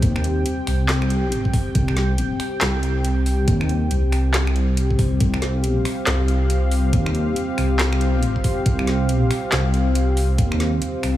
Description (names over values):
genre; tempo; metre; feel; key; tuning
deep dubstep; 139 BPM; 4/4; swing 61% on 16ths, half-time; C minor; A4 = 440 Hz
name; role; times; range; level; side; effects
dark analog pad; sustained chords; 0.0-11.2 s; C4 to G5; -24 LUFS; left 1 dB; chorus
dark detuned saw bass; bass; 0.0-11.2 s; C2 to Eb2; -20 LUFS; equal; none
electronic kick drum; drums; 0.0-10.5 s; none; -21 LUFS; equal; none
garage drum kit; drums; 0.0-11.1 s; finger snaps, handclaps, hi-hat, snare drum; -27 LUFS; equal; none
room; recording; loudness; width
digital ambience; small room reverb; -18 LUFS; side -13 dB against mid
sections
0.0-11.2 A section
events
none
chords
0.0 C5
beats
| 0.03 0.46 0.89 1.32 | 1.75 2.18 2.61 3.05 | 3.48 3.91 4.34 4.77 | 5.20 5.64 6.07 6.50 | 6.93 7.36 7.79 8.23 | 8.66 9.09 9.52 9.95 | 10.38 10.82